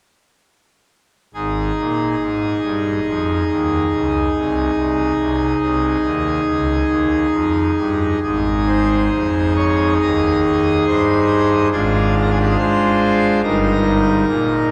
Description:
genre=classical, chorale-style piece for pipe organ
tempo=70 BPM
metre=4/4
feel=rubato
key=Ab major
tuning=A4 = 440 Hz
part: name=pipe organ, full organ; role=solo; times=1.3-14.7 s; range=G1 to Eb5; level=-17 LUFS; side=equal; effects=none
room=wet cathedral reverb, RT60 5.5 s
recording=recorded in a church or concert hall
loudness=-17 LUFS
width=mono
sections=1.3-8.2 A section; 8.2-14.7 B section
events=none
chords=1.3 Ab; 11.7 Bb13/Ab; 13.4 Eb/G

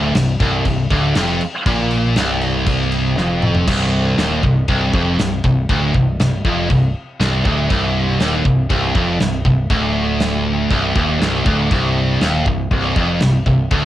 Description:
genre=heavy metal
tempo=120 BPM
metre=4/4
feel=straight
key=C minor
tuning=A4 = 435 Hz
part: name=high-gain distorted guitar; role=riff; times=0.0-13.8 s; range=C2 to Bb2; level=-19 LUFS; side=left 5 dB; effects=distortion, cassette tape
part: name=high-gain distorted guitar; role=riff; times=0.0-13.8 s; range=C2 to Bb2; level=-19 LUFS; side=right 5 dB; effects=distortion, cassette tape
part: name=growling picked electric bass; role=bass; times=0.0-13.8 s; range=C1 to Bb1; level=-22 LUFS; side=equal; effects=overdrive
part: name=modern studio drum kit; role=drums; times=0.1-13.8 s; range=crash cymbal, kick drum, snare drum, toms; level=-21 LUFS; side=equal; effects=cassette tape
room=small room reverb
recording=home recording on cassette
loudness=-14 LUFS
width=side -13 dB against mid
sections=0.0-3.7 A section; 3.7-13.8 B section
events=drum fill 3.2-3.7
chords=0.0 C5; 3.7 Cm

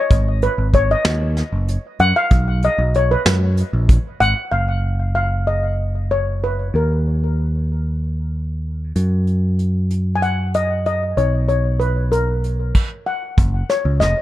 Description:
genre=progressive instrumental, band music in an uneven meter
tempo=190 BPM (eighths)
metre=7/8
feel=straight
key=unclear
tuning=A4 = 439 Hz
part: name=steel pan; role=melody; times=0.0-14.2 s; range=A#4 to G#5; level=-20 LUFS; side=left 1 dB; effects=ping-pong delay
part: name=picked electric bass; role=bass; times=0.1-14.1 s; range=E#1 to F#2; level=-18 LUFS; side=equal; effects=none
part: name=vintage brush drum kit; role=drums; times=0.1-4.4, 9.0-14.2 s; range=crash cymbal, hi-hat, kick drum, snare drum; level=-16 LUFS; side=equal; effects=none
room=light reverb, studio reverb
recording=dark, warm production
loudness=-16 LUFS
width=side -14 dB against mid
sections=0.0-4.5 A section; 4.5-13.4 B section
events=steel pan solo 0.0-4.5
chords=0.1 G#5; 2.3 B5; 4.5 D#madd9/F#; 6.7 D#5; 9.0 D#m/F#; 11.2 F#add11/B (rootless); 13.4 F#maj7(no3)

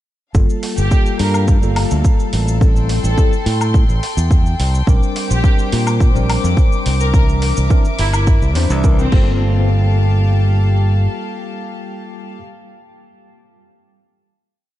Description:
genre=nu-disco, nu disco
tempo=106 BPM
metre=4/4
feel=straight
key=G dorian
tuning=A4 = 440 Hz
part: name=tine electric piano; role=accompaniment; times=0.3-12.4 s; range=E3 to C5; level=-24 LUFS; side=left 1 dB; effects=medium stereo tremolo, sidechain pumping, low-pass filter, tape echo
part: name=modern bright fingered electric bass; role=bass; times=0.3-11.1 s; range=G1 to Bb2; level=-15 LUFS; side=equal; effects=none
part: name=dusty soul sampler-style drum kit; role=drums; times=0.3-9.2 s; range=crash cymbal, hi-hat, shaker, woodblock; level=-27 LUFS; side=left 1 dB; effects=small room ambience
part: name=electronic kick drum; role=drums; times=0.3-9.2 s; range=none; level=-13 LUFS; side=equal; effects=small room ambience
part: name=rich studio string section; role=sustained chords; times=0.4-12.4 s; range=G4 to D6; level=-27 LUFS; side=left 4 dB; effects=sidechain pumping
part: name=rich studio violin section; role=melody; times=0.8-9.4 s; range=C4 to Bb4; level=-26 LUFS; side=left 1 dB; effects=analog delay
room=light reverb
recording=nothing above 10.4 kHz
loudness=-12 LUFS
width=side -14 dB against mid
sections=0.4-9.4 groove; 9.4-11.7 final hit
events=filter sweep on tine electric piano 0.4-9.4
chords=0.4 Gm9; 2.6 Am7; 4.9 Bb69; 7.1 C9; 9.1 Gm9

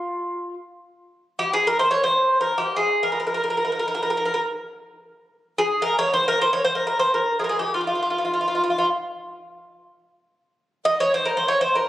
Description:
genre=Turkish makam ensemble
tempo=free time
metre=none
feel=none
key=F makam ussak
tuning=A4 = 440 Hz
part: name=Greek bouzouki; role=solo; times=0.0-11.9 s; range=F4 to Eb5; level=-20 LUFS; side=equal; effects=none
room=moderate recital hall reverb, RT60 1.8 s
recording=recorded on a phone in the room, club reverb, compression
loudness=-20 LUFS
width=side -14 dB against mid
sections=0.9-10.4 A section; 10.4-11.9 A section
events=none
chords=none

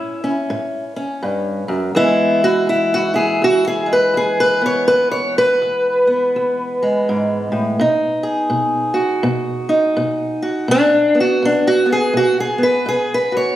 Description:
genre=acoustic country blues, solo or duo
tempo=82 BPM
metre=4/4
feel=swing 62% on 8ths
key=E major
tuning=A4 = 441 Hz
part: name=fingerpicked steel-string acoustic guitar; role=solo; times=0.0-13.6 s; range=E2 to C#5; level=-14 LUFS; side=equal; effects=none
room=light reverb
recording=recorded on a phone in the room, studio reverb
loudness=-14 LUFS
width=side -13 dB against mid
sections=0.0-13.6 A section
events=steel-string acoustic guitar solo 0.0-13.6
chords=0.0 A7; 2.0 E; 7.8 B

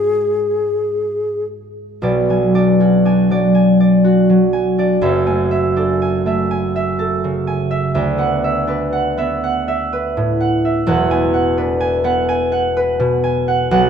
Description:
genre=classical, impressionist duo for flute and harp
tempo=41 BPM (dotted quarters)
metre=6/8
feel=uneven beats, rubato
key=B dorian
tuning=A4 = 442 Hz
part: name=mellow hollow silver concert flute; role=melody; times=0.0-1.4 s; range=G#4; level=-18 LUFS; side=left 2 dB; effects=none
part: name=concert harp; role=accompaniment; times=0.0-13.9 s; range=E1 to G#5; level=-14 LUFS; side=right 1 dB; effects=none
room=moderate concert hall reverb, RT60 2.2 s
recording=close, detailed microphones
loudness=-14 LUFS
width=side -7 dB against mid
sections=0.0-2.0 A section; 2.0-13.9 B section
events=none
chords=0.0 G#m7; 2.0 Bm6; 5.0 F#m9; 8.0 D69; 10.9 Eadd9

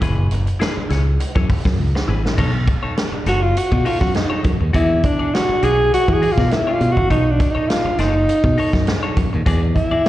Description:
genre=funk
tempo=102 BPM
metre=4/4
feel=straight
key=B mixolydian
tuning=A4 = 439 Hz
part: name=clean electric guitar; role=accompaniment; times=0.0-10.1 s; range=D#4 to D5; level=-28 LUFS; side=left 5 dB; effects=plate reverb, slapback echo
part: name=modern bright fingered electric bass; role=bass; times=0.0-9.9 s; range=F#1 to E3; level=-18 LUFS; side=equal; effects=none
part: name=swinging big-band drum kit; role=drums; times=0.0-10.1 s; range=crash cymbal, hi-hat, kick drum, snare drum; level=-20 LUFS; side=equal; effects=vintage 12-bit sampler grit
part: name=breathy alto saxophone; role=melody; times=3.3-10.1 s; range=D4 to G#4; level=-18 LUFS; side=equal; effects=plate reverb, slapback echo, analog delay
room=light reverb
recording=live gig heard through the venue's PA, cassette tape, recital hall reverb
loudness=-15 LUFS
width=side -14 dB against mid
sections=0.0-2.4 A section; 2.4-10.1 B section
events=drum fill 1.8-2.4; alto saxophone solo 2.4-10.1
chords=0.0 F#9sus4; 2.4 B9; 4.7 E9; 7.1 B9; 9.5 E9

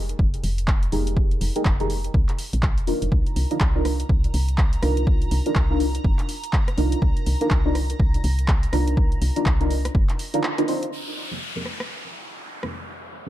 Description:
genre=deep house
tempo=123 BPM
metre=4/4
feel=swing 60% on 16ths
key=F dorian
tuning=A4 = 440 Hz
part: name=woody FM bass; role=bass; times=0.0-10.0 s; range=Eb1 to C2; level=-24 LUFS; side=equal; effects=none
part: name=deep house drum kit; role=drums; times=0.1-12.7 s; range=handclaps, hi-hat, rim click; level=-31 LUFS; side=equal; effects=overdrive
part: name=electronic kick drum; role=drums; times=0.2-10.1 s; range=none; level=-20 LUFS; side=equal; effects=overdrive
part: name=deep mellow chord stab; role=stabs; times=0.9-13.3 s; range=F3 to C5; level=-26 LUFS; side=equal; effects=chorus, phaser, sidechain pumping, digital delay
part: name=analog string pad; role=texture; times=3.1-10.9 s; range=Bb5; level=-38 LUFS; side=right 2 dB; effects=ensemble chorus, sidechain pumping
part: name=downlifter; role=sound effects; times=10.9-13.3 s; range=none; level=-32 LUFS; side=left 1 dB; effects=none
room=digital ambience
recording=dark, warm production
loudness=-20 LUFS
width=side -14 dB against mid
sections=0.0-10.9 A section; 10.9-13.3 B section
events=band accent 10.4; filter sweep on synth stab 10.9-13.3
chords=0.0 Fm11; 3.1 Cm11; 10.9 Fm11

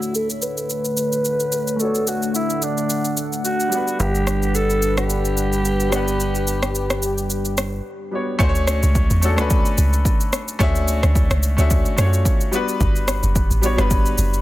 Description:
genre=amapiano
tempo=109 BPM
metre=4/4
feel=swing 55% on 16ths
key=D major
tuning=A4 = 440 Hz
part: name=growling alto saxophone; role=melody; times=0.0-7.8 s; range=D4 to B4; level=-23 LUFS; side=equal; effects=low-pass filter, tape echo
part: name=clear baby grand piano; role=accompaniment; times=0.0-14.4 s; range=G3 to F#5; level=-25 LUFS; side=left 2 dB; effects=low-pass filter
part: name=warm analog pad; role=sustained chords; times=0.0-8.4 s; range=D3 to F#5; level=-25 LUFS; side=equal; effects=chorus, sidechain pumping, low-pass filter
part: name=deep house drum kit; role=drums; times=0.0-14.4 s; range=kick drum, rim click, shaker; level=-22 LUFS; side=equal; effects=overdrive
part: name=plucky analog bass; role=bass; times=4.0-7.8 s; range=G1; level=-22 LUFS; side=equal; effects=none
part: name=deep log drum bass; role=bass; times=8.4-14.4 s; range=F#1 to F#2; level=-18 LUFS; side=equal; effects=none
room=small room ambience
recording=dense, heavily limited modern master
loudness=-17 LUFS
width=side -16 dB against mid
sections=0.0-8.4 A section; 8.4-14.4 B section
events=filter sweep 0.0-8.4; drop 8.4-14.4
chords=0.0 Dmaj7; 3.7 Gmaj7; 8.4 Dmaj7; 12.5 Gmaj7

